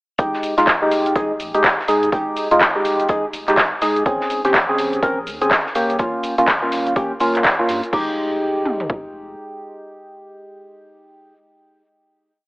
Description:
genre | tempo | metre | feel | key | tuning
deep house | 124 BPM | 4/4 | swing 60% on 16ths | F minor | A4 = 440 Hz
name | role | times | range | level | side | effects
percussive organ stab | stabs | 0.2-11.3 s | Ab3 to Bb4 | -18 LUFS | equal | wide subtle chorus, sidechain pumping, digital delay
warm sub bass | bass | 0.2-9.3 s | F1 to G2 | -42 LUFS | equal | tube saturation, sidechain pumping
deep house drum kit | drums | 0.2-9.0 s | kick drum, toms | -23 LUFS | equal | none
deep house drum kit | drums | 0.2-8.0 s | crash cymbal, handclaps, hi-hat, shaker | -20 LUFS | equal | none
unplugged drum kit | drums | 0.2-7.8 s | hi-hat, snare drum | -32 LUFS | equal | none
room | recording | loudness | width
moderate echo chamber reverb, RT60 1.8 s | telephone sound | -16 LUFS | side -23 dB against mid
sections
0.2-7.9 drop; 7.9-11.8 final chord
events
drop 0.2-7.9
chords
0.2 Fm9; 4.1 Bbm9; 5.8 Gm7b5; 7.9 Fm9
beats
| 0.19 0.67 1.16 1.64 | 2.12 2.61 3.09 3.58 | 4.06 4.54 5.03 5.51 | 6.00 6.48 6.96 7.45 | 7.93 8.41 8.90 9.38 | 9.87 10.35 10.83 11.32

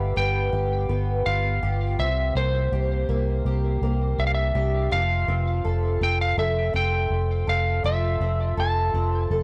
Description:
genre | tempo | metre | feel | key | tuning
dream pop | 82 BPM | 4/4 | straight | F major | A4 = 440 Hz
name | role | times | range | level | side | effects
electric slide guitar | melody | 0.0-9.4 s | C5 to A5 | -29 LUFS | equal | tape echo
fingerpicked twelve-string acoustic guitar | arpeggios | 0.0-9.4 s | G2 to A4 | -31 LUFS | equal | lush chorus, tape echo
vintage muted fingered electric bass | bass | 0.0-9.4 s | F1 to C2 | -26 LUFS | equal | tube saturation
room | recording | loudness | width
light reverb, studio reverb | dry, gritty hardware recording, transformer saturation | -24 LUFS | mono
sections
0.0-9.4 A section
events
none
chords
0.0 G7; 2.0 Csus2; 4.9 Fmaj7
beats
0.53 1.26 | 1.99 2.72 3.45 4.18 | 4.92 5.65 6.38 7.11 | 7.84 8.58 9.31

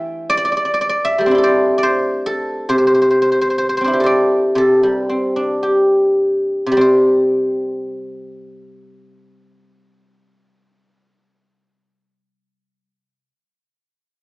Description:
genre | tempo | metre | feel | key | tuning
chinese traditional, Chinese solo plucked strings | 50-82 BPM | 4/4 | rubato | C gong mode | A4 = 440 Hz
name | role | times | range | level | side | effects
guzheng | solo | 0.0-13.3 s | C3 to C6 | -14 LUFS | equal | none
room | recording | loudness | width
moderate recital hall reverb, RT60 1.6 s | small speaker sound | -14 LUFS | side -24 dB against mid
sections
0.0-6.8 A section; 6.8-11.4 B section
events
slowing down 0.0-6.8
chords
none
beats
0.33 1.09 1.88 | 2.71 3.60 4.56 5.64 | 6.80 7.97 9.13 10.28

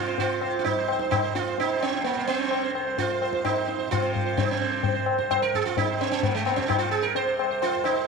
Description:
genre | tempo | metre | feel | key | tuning
indian classical, Hindustani | 129 BPM | 3/4 | straight | unclear | A4 = 440 Hz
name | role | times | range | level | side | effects
sitar | melody | 0.0-8.1 s | Ab3 to C5 | -25 LUFS | right 8 dB | none
tanpura | drone | 0.0-8.1 s | C2 to C3 | -33 LUFS | right 1 dB | none
tabla | percussion | 0.2-8.0 s | none | -27 LUFS | left 9 dB | none
room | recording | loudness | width
wet echo chamber reverb, RT60 2.4 s | 1960s-style stereo with parts hard left and right | -23 LUFS | side -4 dB against mid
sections
0.0-8.1 A section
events
none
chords
none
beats
| 0.19 0.66 1.12 | 1.59 2.06 2.52 | 2.99 3.45 3.92 | 4.38 4.84 5.30 | 5.77 6.23 6.69 | 7.15 7.61 8.07

